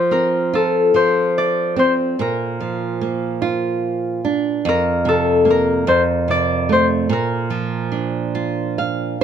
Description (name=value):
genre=children's music, lullaby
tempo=48 BPM (dotted quarters)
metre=6/8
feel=rubato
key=Bb major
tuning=A4 = 439 Hz
part: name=concert harp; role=melody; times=0.0-9.2 s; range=A4 to D5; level=-18 LUFS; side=left 3 dB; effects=none
part: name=nylon-string guitar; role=accompaniment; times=0.0-9.2 s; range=F2 to F5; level=-19 LUFS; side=right 4 dB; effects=none
room=light reverb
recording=none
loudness=-16 LUFS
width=side -8 dB against mid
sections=0.0-9.2 A section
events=nylon-string guitar fill 8.4-9.2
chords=0.0 F5; 2.2 Bb; 4.6 Fsus4; 5.9 F; 7.1 Bb